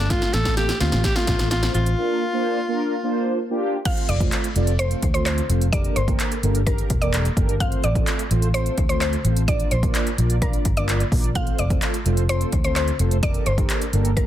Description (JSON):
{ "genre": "dance-pop", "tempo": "128 BPM", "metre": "4/4", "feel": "straight", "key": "F major", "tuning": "A4 = 441 Hz", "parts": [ { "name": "bright alto saxophone", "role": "melody", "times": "0.0-3.3 s", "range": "D4 to A4", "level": "-25 LUFS", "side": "left 2 dB", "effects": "ping-pong delay" }, { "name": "vintage muted fingered electric bass", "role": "bass", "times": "0.0-14.3 s", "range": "E1 to D2", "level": "-22 LUFS", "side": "equal", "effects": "sidechain pumping" }, { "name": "mellow synth brass", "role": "accompaniment", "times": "0.1-14.3 s", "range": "A3 to D5", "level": "-26 LUFS", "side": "right 1 dB", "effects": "chorus, sidechain pumping" }, { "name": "deep house drum kit", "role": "drums", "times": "0.1-14.3 s", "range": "crash cymbal, handclaps, hi-hat, kick drum, snare drum", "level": "-23 LUFS", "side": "equal", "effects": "none" }, { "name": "mallet-like synth pluck", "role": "melody", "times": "3.9-14.3 s", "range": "Bb4 to F5", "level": "-27 LUFS", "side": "left 1 dB", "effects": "chorus, sidechain pumping, ping-pong delay" } ], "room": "little or no reverb", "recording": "dense, heavily limited modern master", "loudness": "-19 LUFS", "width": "side -12 dB against mid", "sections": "0.0-3.9 A section; 3.9-14.3 B section", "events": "build-up 0.0-3.9; drum fill 0.0-2.0; break 2.0-3.9; drop 3.9-14.3", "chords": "0.1 F; 2.0 Bb; 3.9 F; 5.7 Gmadd9; 7.6 F; 9.5 Bb; 11.4 F; 13.2 Gmadd9" }